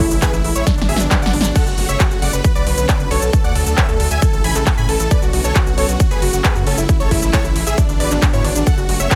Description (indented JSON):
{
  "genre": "uplifting trance",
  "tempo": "135 BPM",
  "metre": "4/4",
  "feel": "straight",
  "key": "unclear",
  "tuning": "A4 = 440 Hz",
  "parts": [
    { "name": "big supersaw lead", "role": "melody", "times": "0.0-9.2 s", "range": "C#4 to B5", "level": "-24 LUFS", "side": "equal", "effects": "sidechain pumping, digital delay" },
    { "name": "analog pluck", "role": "second line", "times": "0.0-9.2 s", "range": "D4 to B5", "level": "-29 LUFS", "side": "equal", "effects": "chorus, sidechain pumping" },
    { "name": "lush unison pad", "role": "sustained chords", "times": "0.0-9.2 s", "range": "A2 to F#4", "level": "-28 LUFS", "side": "equal", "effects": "chorus, sidechain pumping" },
    { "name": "gritty driven synth bass", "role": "bass", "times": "0.0-9.1 s", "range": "F#1 to A2", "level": "-23 LUFS", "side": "equal", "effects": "tube saturation, sidechain pumping" },
    { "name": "big-room dance drum kit", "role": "drums", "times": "0.0-9.2 s", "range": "crash cymbal, handclaps, hi-hat, ride cymbal, shaker, snare drum", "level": "-24 LUFS", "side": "equal", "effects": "overdrive, sidechain pumping on hats, sidechain pumping on perc, sidechain pumping on cymbals" },
    { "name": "electronic kick drum", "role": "drums", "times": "0.0-9.2 s", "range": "none", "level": "-18 LUFS", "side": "equal", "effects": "overdrive" }
  ],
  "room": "little or no reverb",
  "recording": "none",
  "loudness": "-16 LUFS",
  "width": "mono",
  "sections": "0.0-9.2 A section",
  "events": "drum fill 0.7-1.6",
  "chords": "0.0 Amaj7; 0.7 G#m7b5; 1.6 F#madd9; 2.4 Bmadd9; 3.3 D; 4.2 Amaj7; 5.1 Bmadd9; 6.0 F#madd9; 6.9 Amaj7; 7.8 G#m7b5"
}